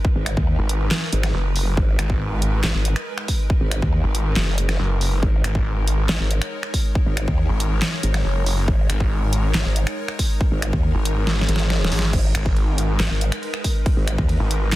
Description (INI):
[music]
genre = heavy wobble dubstep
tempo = 139 BPM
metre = 4/4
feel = half-time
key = G# minor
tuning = A4 = 440 Hz
[part]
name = evolving wavetable pad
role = sustained chords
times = 0.0-14.8 s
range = G#3 to C#5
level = -30 LUFS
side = left 1 dB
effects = ensemble chorus, built-in reverb, sidechain pumping
[part]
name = electronic kick drum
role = drums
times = 0.0-14.3 s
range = none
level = -21 LUFS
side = equal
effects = overdrive
[part]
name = growl bass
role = bass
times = 0.2-14.4 s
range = F#1 to D#2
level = -21 LUFS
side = equal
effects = chorus, overdrive
[part]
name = dubstep drum kit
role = drums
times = 0.3-14.8 s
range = crash cymbal, finger snaps, handclaps, hi-hat, ride cymbal, snare drum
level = -25 LUFS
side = equal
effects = overdrive
[part]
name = snarling distorted saw bass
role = bass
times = 0.6-14.7 s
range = F#1 to G#1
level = -21 LUFS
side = equal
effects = distortion, overdrive
[part]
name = swell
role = sound effects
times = 11.4-12.1 s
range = none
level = -34 LUFS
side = equal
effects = none
[sound]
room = digital ambience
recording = dense, heavily limited modern master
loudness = -18 LUFS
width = side -16 dB against mid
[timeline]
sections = 0.0-14.8 A section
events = drum fill 11.3-12.1; swell 11.4-12.1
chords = 0.0 G#madd9